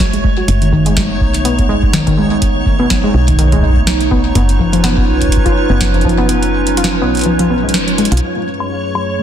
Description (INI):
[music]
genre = IDM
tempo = 124 BPM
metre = 4/4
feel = swing 56% on 16ths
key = unclear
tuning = A4 = 440 Hz
[part]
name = warbly tape-like pad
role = sustained chords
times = 0.0-9.2 s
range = F#2 to B4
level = -18 LUFS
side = right 2 dB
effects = chorus, built-in reverb, vintage 12-bit sampler grit
[part]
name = woody FM bass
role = bass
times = 0.0-8.2 s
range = F#1 to B1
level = -17 LUFS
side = equal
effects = none
[part]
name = booming analog drum machine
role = drums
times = 0.0-9.1 s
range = hi-hat, snare drum, woodblock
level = -19 LUFS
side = right 1 dB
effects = low-pass filter on hats, low-pass filter on cymbals, low-pass filter on snare, low-pass filter on perc, low-pass filter on room, ping-pong delay
[part]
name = electronic kick drum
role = drums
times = 0.0-6.2 s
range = none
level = -16 LUFS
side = equal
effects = none
[part]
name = backwards swelling texture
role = texture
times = 0.0-9.2 s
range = C#5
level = -23 LUFS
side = equal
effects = built-in reverb
[part]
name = warbly dusty pluck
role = arpeggios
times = 0.1-9.2 s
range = D#3 to F#4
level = -17 LUFS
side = left 1 dB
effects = chorus, digital delay
[sound]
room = light reverb, digital ambience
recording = dense, heavily limited modern master, faint mains hum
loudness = -11 LUFS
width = side -9 dB against mid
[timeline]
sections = 0.0-8.2 A section; 8.2-9.2 B section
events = kick drops out 6.3-8.2; band accent 7.7; drum fill 8.0; filter sweep on ambient pad 8.2-9.2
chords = 0.5 B13/F#; 4.4 C#7/F#; 8.2 F#madd9